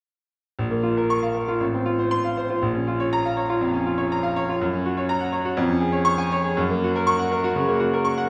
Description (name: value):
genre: classical, virtuoso piano study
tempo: 121 BPM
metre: 4/4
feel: rubato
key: Bb minor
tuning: A4 = 435 Hz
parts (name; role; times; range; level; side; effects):
- bright grand piano; solo; 0.6-8.3 s; A1 to Db6; -23 LUFS; equal; none
room: wet recital hall reverb, RT60 1.5 s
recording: heard from further back in the room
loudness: -23 LUFS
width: mono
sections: 0.6-8.3 A section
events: none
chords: 0.6 Bbm; 1.6 F/A; 2.6 Bbm; 4.6 Gb; 5.6 Db/F; 6.6 Gb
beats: | 0.59 1.11 1.61 2.11 | 2.61 3.12 3.61 4.11 | 4.60 5.10 5.59 6.08 | 6.58 7.08 7.57 8.07